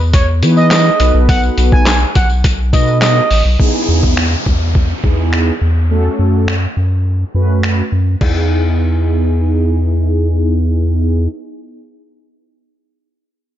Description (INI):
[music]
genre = dance-pop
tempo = 104 BPM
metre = 4/4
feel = straight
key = E major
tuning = A4 = 440 Hz
[part]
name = round analog bass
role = bass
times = 0.0-11.3 s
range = A1 to E3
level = -13 LUFS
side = equal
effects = sidechain pumping
[part]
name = expressive synth lead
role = melody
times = 0.1-3.4 s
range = C#5 to G#5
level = -17 LUFS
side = right 4 dB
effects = chorus, sidechain pumping, tape echo
[part]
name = lo-fi sampler-style drum kit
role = drums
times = 0.1-8.3 s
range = crash cymbal, finger snaps, handclaps, hi-hat, kick drum, snare drum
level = -15 LUFS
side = equal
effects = overdrive
[part]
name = tambourine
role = percussion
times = 0.1-3.4 s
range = none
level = -28 LUFS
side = left 10 dB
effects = none
[part]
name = mellow synth brass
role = accompaniment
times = 0.4-11.3 s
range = A3 to B4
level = -18 LUFS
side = equal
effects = chorus, sidechain pumping, low-pass filter
[part]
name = downlifter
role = sound effects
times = 3.6-8.2 s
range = none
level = -24 LUFS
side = equal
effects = none
[sound]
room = digital ambience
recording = nothing above 7.5 kHz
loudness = -11 LUFS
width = side -11 dB against mid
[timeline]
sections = 0.0-3.6 A section; 3.6-8.2 B section; 8.2-10.5 C section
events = drop 0.0-3.6; filter sweep on analog polysynth 3.6-8.2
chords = 0.0 Emaj7; 1.0 B7; 3.6 Emaj7; 5.9 F#m; 8.2 Emaj7